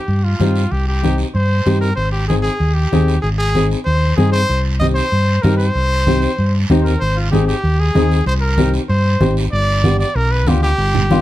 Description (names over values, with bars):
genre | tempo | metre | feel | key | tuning
latin, cumbia | 191 BPM | 4/4 | straight | C minor | A4 = 439 Hz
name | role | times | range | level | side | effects
bright trumpet | melody | 0.0-11.2 s | F4 to Eb5 | -20 LUFS | equal | plate reverb
fingered electric bass | bass | 0.1-11.2 s | G1 to G2 | -16 LUFS | equal | none
congas | percussion | 0.1-11.2 s | none | -20 LUFS | right 1 dB | none
guiro | percussion | 0.1-11.2 s | none | -31 LUFS | right 4 dB | none
flamenco guitar | accompaniment | 0.4-11.2 s | B3 to Ab4 | -19 LUFS | left 3 dB | none
room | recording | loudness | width
light reverb | close, detailed microphones | -13 LUFS | side -14 dB against mid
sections
0.0-9.5 A section; 9.5-11.2 B section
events
none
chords
0.0 Cm; 2.0 Ab; 4.5 Cm; 7.0 Ab; 8.3 Cm; 9.5 G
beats
0.09 0.40 | 0.72 1.03 1.35 1.66 | 1.98 2.29 2.61 2.92 | 3.24 3.55 3.87 4.18 | 4.50 4.81 5.13 5.44 | 5.76 6.07 6.39 6.70 | 7.01 7.33 7.64 7.96 | 8.27 8.59 8.90 9.22 | 9.53 9.85 10.16 10.47 | 10.79 11.10